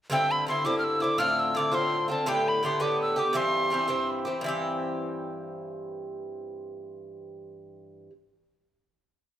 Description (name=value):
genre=celtic folk, Celtic jig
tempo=111 BPM (dotted quarters)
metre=6/8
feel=straight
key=C major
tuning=A4 = 442 Hz
part: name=tin whistle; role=melody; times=0.1-4.1 s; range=G5 to F6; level=-26 LUFS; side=right 1 dB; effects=none
part: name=Irish bouzouki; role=accompaniment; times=0.1-8.1 s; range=G2 to G4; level=-29 LUFS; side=equal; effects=none
room=moderate recital hall reverb, RT60 1.4 s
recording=none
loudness=-25 LUFS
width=side -11 dB against mid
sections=0.1-4.4 A section; 4.4-6.6 final chord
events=none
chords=0.1 Cadd9; 1.2 F6; 2.3 Gadd9; 3.4 C